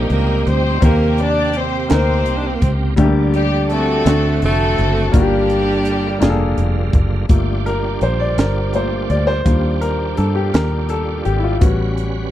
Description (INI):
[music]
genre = slow gospel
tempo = 56 BPM (dotted quarters)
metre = 6/8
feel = straight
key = G minor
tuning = A4 = 439 Hz
[part]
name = breathy tenor saxophone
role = melody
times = 0.0-6.6 s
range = F#3 to D4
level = -22 LUFS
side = right 4 dB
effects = none
[part]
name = warm studio string section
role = melody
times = 0.0-6.6 s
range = Bb3 to D5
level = -22 LUFS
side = left 4 dB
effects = slapback echo
[part]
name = clear baby grand piano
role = accompaniment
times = 0.0-12.3 s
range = G2 to D5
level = -20 LUFS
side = left 3 dB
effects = none
[part]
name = bright tonewheel organ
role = sustained chords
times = 0.0-12.3 s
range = C3 to B4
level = -25 LUFS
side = right 5 dB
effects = slow rotary speaker, overdrive, chorus vibrato
[part]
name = fingered electric bass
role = bass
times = 0.0-12.3 s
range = F1 to G2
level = -18 LUFS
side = equal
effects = none
[part]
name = crisp fusion drum kit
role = drums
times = 0.1-12.1 s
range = hi-hat, kick drum, snare drum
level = -15 LUFS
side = equal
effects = none
[sound]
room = little or no reverb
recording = dry, close 1970s-style studio recording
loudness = -14 LUFS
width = side -12 dB against mid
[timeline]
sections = 0.0-7.3 A section; 7.3-12.3 B section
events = grand piano solo 7.3-12.3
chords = 0.0 Cm7; 0.8 Eb6; 3.0 Gm/D; 4.1 D7; 5.1 Gm7; 7.3 Gm9; 9.5 Ebmaj9; 11.6 A13